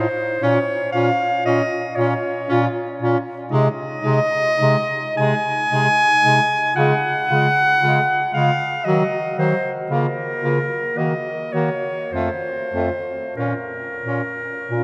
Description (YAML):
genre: classical, lyrical piece for single-reed quartet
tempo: 44-60 BPM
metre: 3/4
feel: rubato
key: Bb minor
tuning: A4 = 445 Hz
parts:
  - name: clear clarinet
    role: melody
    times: 0.0-14.8 s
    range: Bb4 to Ab5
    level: -22 LUFS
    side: equal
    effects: none
  - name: warm alto saxophone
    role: second line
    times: 0.0-14.8 s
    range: Eb4 to Gb4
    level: -31 LUFS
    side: equal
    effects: none
  - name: clear tenor saxophone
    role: accompaniment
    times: 0.0-14.8 s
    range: Gb3 to Db4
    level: -28 LUFS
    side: equal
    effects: none
  - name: clear bass clarinet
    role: bass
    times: 0.0-14.8 s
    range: F2 to Eb3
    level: -26 LUFS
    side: equal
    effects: none
room: wet cathedral reverb, RT60 5.7 s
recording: in a vast, echoing space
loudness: -20 LUFS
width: mono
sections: 0.0-14.8 A section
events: none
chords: 0.4 Bbm; 3.5 Ab/C; 6.8 Db; 8.9 Ebm; 9.9 Bbm/Db; 11.0 Ebm7; 12.1 F; 13.4 Bbm